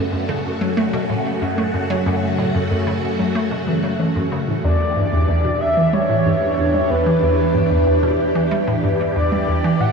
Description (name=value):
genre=ambient, sequencer-driven space music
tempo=93 BPM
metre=4/4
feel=straight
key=unclear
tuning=A4 = 442 Hz
part: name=phased string machine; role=sustained chords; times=0.0-9.9 s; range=E2 to G4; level=-21 LUFS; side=right 1 dB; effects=ensemble chorus, phaser, shimmer reverb
part: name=hollow square pluck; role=riff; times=0.0-9.9 s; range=E2 to A3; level=-20 LUFS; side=equal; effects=chorus, shimmer reverb, tape echo
part: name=breathy flute-like synth lead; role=melody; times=4.6-9.9 s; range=B4 to F#5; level=-19 LUFS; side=left 1 dB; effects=analog chorus, cassette tape, shimmer reverb, tape echo
room=wet huge ambient reverb, RT60 7.6 s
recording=in a vast, echoing space, small room ambience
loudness=-16 LUFS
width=side -5 dB against mid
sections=0.0-9.9 A section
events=none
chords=0.0 F#m; 4.6 Em7